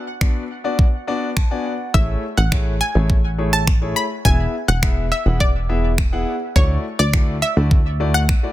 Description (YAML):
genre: dance-pop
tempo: 104 BPM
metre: 4/4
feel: straight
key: unclear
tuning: A4 = 439 Hz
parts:
  - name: analog pluck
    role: melody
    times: 0.0-8.5 s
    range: C#5 to B5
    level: -23 LUFS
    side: equal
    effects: chorus, dub echo
  - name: clear grand piano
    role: accompaniment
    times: 0.0-8.5 s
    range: A3 to A5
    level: -25 LUFS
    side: left 3 dB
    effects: sidechain pumping
  - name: pop drum kit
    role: drums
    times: 0.2-8.4 s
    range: finger snaps, kick drum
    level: -16 LUFS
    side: equal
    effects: soft clipping on snare
  - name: plucky analog bass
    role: bass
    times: 1.9-8.3 s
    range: E1 to D2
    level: -19 LUFS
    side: equal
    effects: sidechain pumping
room: little or no reverb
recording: dense, heavily limited modern master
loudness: -16 LUFS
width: side -15 dB against mid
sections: 0.0-8.5 A section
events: grand piano fill 1.1-1.9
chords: 0.0 Bm; 1.9 Amaj7; 4.2 E; 6.6 Dadd9